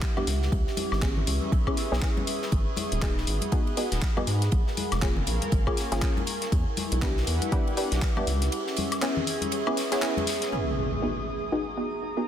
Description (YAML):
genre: deep house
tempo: 120 BPM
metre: 4/4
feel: swing 59% on 16ths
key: unclear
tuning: A4 = 436 Hz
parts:
  - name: deep dark ambient pad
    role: sustained chords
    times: 0.0-12.3 s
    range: F#4 to D6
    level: -35 LUFS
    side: right 2 dB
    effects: chorus, built-in reverb, sidechain pumping
  - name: deep house drum kit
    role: drums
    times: 0.0-10.5 s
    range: handclaps, hi-hat, woodblock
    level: -33 LUFS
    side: left 3 dB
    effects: overdrive
  - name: electronic kick drum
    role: drums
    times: 0.0-8.1 s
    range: none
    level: -26 LUFS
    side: equal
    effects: overdrive
  - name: gated 80s drum kit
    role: drums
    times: 0.0-10.5 s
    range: ride cymbal, snare drum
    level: -40 LUFS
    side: right 3 dB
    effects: high-pass filter on cymbals, high-pass filter on snare, high-pass filter on room
  - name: airy breathy pad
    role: texture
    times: 0.0-12.3 s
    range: C#4 to D#6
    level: -35 LUFS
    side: right 1 dB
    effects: chorus, sidechain pumping
  - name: filtered dub chord stab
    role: stabs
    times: 0.2-12.3 s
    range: A#3 to G#4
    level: -32 LUFS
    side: left 1 dB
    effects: chorus, sidechain pumping, digital delay
  - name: congas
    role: percussion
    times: 0.2-10.3 s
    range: none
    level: -36 LUFS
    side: left 5 dB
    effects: none
  - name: rubbery square bass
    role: bass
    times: 0.3-8.5 s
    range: D#1 to G#2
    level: -27 LUFS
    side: equal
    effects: sidechain pumping
  - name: impact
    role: sound effects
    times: 10.5-12.3 s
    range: none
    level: -32 LUFS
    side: equal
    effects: none
room: light reverb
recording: dense, heavily limited modern master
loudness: -24 LUFS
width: side -10 dB against mid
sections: 0.0-10.5 A section; 10.5-12.3 B section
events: fade-in on analog synth pad 0.0-10.5; filter sweep on synth stab 0.0-10.5; kick drops out 8.5-10.5; impact 10.5-12.3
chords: 0.3 C#m7; 2.5 G#m7; 4.5 A#m7; 6.5 Em7; 8.3 C#m7; 10.5 G#m7